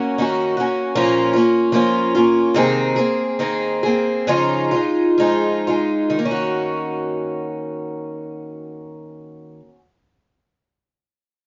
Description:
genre	folk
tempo	59-80 BPM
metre	4/4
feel	straight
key	Eb dorian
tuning	A4 = 439 Hz
part	picked twelve-string acoustic guitar	accompaniment	0.0-9.8 s	Bb2 to Ab4	-20 LUFS	equal	none
room	moderate studio reverb, RT60 0.5 s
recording	nothing above 7.4 kHz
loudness	-19 LUFS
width	mono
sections	0.0-6.2 A section; 6.2-10.3 B section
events	slowing down 0.0-6.2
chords	0.0 Ebm7; 1.0 Bbm; 2.6 Abadd9/C; 4.3 Dbadd9; 6.2 Ebm7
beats	0.21 0.97 1.76 | 2.56 3.40 4.28 5.21 | 6.20 7.22 8.24 9.26

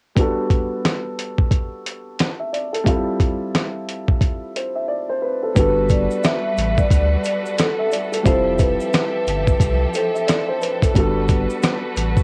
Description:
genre	hip hop, boom-bap hip-hop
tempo	89 BPM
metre	4/4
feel	swing 62% on 16ths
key	G major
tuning	A4 = 440 Hz
part	dark grand piano	accompaniment	0.2-12.2 s	G3 to E5	-26 LUFS	equal	high-pass filter, low-pass filter, cassette tape
part	dusty soul sampler-style drum kit	drums	0.2-12.2 s	hi-hat, kick drum, rim click, snare drum	-21 LUFS	equal	cassette tape
part	vibraphone with soft mallets	melody	5.6-10.5 s	A4 to E5	-24 LUFS	equal	high-pass filter, low-pass filter, cassette tape
part	clear studio string section	sustained chords	5.6-12.2 s	F3 to E5	-30 LUFS	equal	high-pass filter, low-pass filter, cassette tape
part	warm sub bass	bass	5.6-12.2 s	F1 to D2	-24 LUFS	equal	none
part	tube shaker	percussion	5.6-12.2 s	none	-43 LUFS	equal	none
room	light reverb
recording	home recording on cassette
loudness	-20 LUFS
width	mono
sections	0.2-5.6 A section; 5.6-12.2 B section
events	silent gap 4.9-5.6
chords	0.2 Gmaj9; 2.9 Fmaj9; 5.6 Gmaj9; 8.3 Fmaj9; 11.0 Gmaj9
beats	| 0.17 0.84 1.51 2.19 | 2.86 3.54 4.21 4.88 | 5.56 6.23 6.91 7.58 | 8.26 8.93 9.60 10.28 | 10.95 11.63

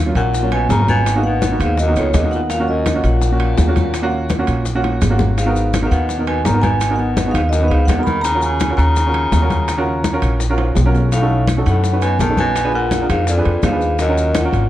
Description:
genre	Afro-Cuban jazz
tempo	167 BPM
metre	4/4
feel	straight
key	Eb minor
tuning	A4 = 440 Hz
part	upright bass	bass	0.0-14.7 s	Ab1 to F#2	-17 LUFS	equal	none
part	warm baby grand piano	accompaniment	0.1-14.7 s	Gb3 to Cb5	-22 LUFS	right 2 dB	none
part	vibraphone with medium mallets	melody	0.2-14.7 s	Db5 to Cb6	-21 LUFS	right 1 dB	none
part	breathy baritone saxophone	second line	0.2-14.7 s	F2 to Eb3	-23 LUFS	left 4 dB	none
part	congas	percussion	0.2-14.7 s	none	-24 LUFS	left 2 dB	none
part	maracas	percussion	0.2-14.7 s	none	-34 LUFS	left 7 dB	none
part	timbales	percussion	0.2-14.7 s	none	-28 LUFS	right 5 dB	none
part	bongos	percussion	0.3-14.5 s	none	-28 LUFS	left 5 dB	none
room	light reverb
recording	dark, warm production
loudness	-14 LUFS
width	side -13 dB against mid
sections	0.0-14.7 A section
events	drum fill 4.8-5.4, 10.6-11.1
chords	0.0 Ebm7 (rootless); 1.1 Abm7; 2.5 Ebm7; 5.4 Abm7; 8.2 Ebm7; 11.1 B7; 12.6 Bb7b9; 14.0 Ebm7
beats	0.34 0.70 | 1.06 1.42 1.77 2.13 | 2.50 2.85 3.21 3.57 | 3.93 4.29 4.65 5.01 | 5.37 5.73 6.09 6.45 | 6.81 7.17 7.53 7.89 | 8.25 8.61 8.97 9.33 | 9.69 10.05 10.41 10.77 | 11.12 11.48 11.84 12.20 | 12.56 12.92 13.28 13.64 | 14.00 14.36

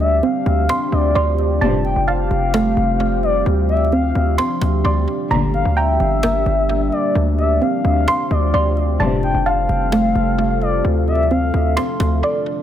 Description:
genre	hip hop, trap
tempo	130 BPM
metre	4/4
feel	half-time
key	D minor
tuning	A4 = 440 Hz
part	gliding portamento lead	second line	0.0-11.7 s	D5 to G5	-21 LUFS	left 3 dB	chorus, analog delay
part	deep dark ambient pad	sustained chords	0.0-12.6 s	F3 to A4	-23 LUFS	equal	chorus, built-in reverb
part	hard-hitting 808-style bass	bass	0.0-12.2 s	F1 to D2	-19 LUFS	equal	none
part	cajon	drums	0.0-12.1 s	none	-32 LUFS	equal	analog delay
part	soft round pluck	arpeggios	0.2-12.6 s	A3 to C6	-21 LUFS	right 3 dB	chorus, analog delay
part	dark studio string section	stabs	1.6-1.9, 5.3-5.6, 9.0-9.3 s	D2 to D3	-23 LUFS	left 3 dB	none
room	light reverb, small room reverb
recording	echo-heavy mix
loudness	-15 LUFS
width	side -10 dB against mid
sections	0.0-12.6 A section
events	drums muted 12.2-12.6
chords	0.0 Dm7; 1.6 Fadd9; 3.5 Dm7; 5.3 Gm; 7.2 Dm7; 9.0 Fadd9; 10.8 Dm7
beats	0.23 0.69 1.15 | 1.61 2.08 2.54 3.00 | 3.46 3.92 4.38 4.85 | 5.31 5.77 6.23 6.69 | 7.15 7.62 8.08 8.54 | 9.00 9.46 9.92 10.38 | 10.85 11.31 11.77 12.23

